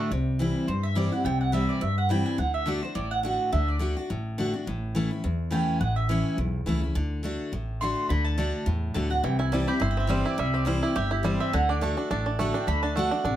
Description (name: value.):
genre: bluegrass.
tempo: 210 BPM.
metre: 4/4.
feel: swing 54% on 8ths.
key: D mixolydian.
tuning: A4 = 440 Hz.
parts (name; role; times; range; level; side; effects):
bluegrass banjo; melody; 0.0-0.1, 9.2-13.4 s; D3 to G4; -29 LUFS; right 3 dB; none.
picked steel-string acoustic guitar; accompaniment; 0.0-13.4 s; E2 to F#4; -28 LUFS; left 2 dB; none.
upright bass; bass; 0.1-13.4 s; G1 to G2; -28 LUFS; equal; none.
mandolin; stabs; 0.7-13.4 s; G4 to C6; -30 LUFS; right 3 dB; none.
room: light reverb.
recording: none.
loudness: -24 LUFS.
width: side -12 dB against mid.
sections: 0.1-13.4 A section.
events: mandolin solo 0.1-13.4.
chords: 0.1 C; 2.4 D; 4.7 A; 7.0 D; 9.2 C; 11.5 D.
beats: | 0.10 0.39 0.67 0.96 | 1.24 1.53 1.81 2.10 | 2.38 2.67 2.96 3.24 | 3.53 3.81 4.10 4.38 | 4.67 4.95 5.24 5.53 | 5.81 6.10 6.38 6.67 | 6.96 7.24 7.53 7.81 | 8.10 8.38 8.67 8.96 | 9.24 9.53 9.81 10.10 | 10.39 10.67 10.96 11.24 | 11.53 11.81 12.10 12.39 | 12.67 12.96 13.24.